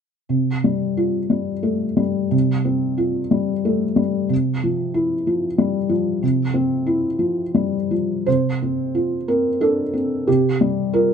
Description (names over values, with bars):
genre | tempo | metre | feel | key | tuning
neoclassical minimalist piano | 82-95 BPM | 3/4 | rubato | unclear | A4 = 440 Hz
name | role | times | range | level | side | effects
felt-muted upright piano | solo | 0.3-11.1 s | C3 to C5 | -18 LUFS | left 1 dB | none
room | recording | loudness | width
light reverb | close, detailed microphones | -18 LUFS | side -7 dB against mid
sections
0.3-8.3 A section; 8.3-11.1 B section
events
none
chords
0.3 Csus4; 4.3 F5/C; 8.3 C7sus4